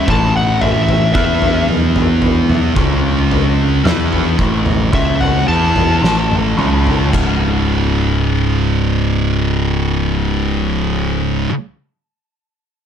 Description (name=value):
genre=stoner and doom metal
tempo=55 BPM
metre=4/4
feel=straight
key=C# minor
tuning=A4 = 440 Hz
part: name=fuzz lead guitar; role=melody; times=0.0-7.1 s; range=E5 to A5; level=-20 LUFS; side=left 1 dB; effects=distortion, tape echo
part: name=thick fuzz guitar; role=riff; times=0.0-11.5 s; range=C#2 to E4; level=-19 LUFS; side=left 10 dB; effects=distortion
part: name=thick fuzz guitar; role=riff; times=0.0-11.5 s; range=C#2 to E4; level=-19 LUFS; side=right 10 dB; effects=distortion
part: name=growling picked electric bass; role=bass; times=0.0-11.5 s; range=C#1 to E2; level=-18 LUFS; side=equal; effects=overdrive
part: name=oversized low-tuned drum kit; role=drums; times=0.1-7.4 s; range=china cymbal, kick drum, snare drum, toms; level=-18 LUFS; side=equal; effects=none
room=light reverb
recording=none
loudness=-12 LUFS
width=side -8 dB against mid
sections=0.0-7.1 A section; 7.1-11.6 B section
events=slowing down 0.0-7.1; lead electric guitar solo 0.0-7.1; drum fill 6.0-7.1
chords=0.0 A5; 1.1 E5; 2.8 C#5; 3.8 A5; 7.1 C#5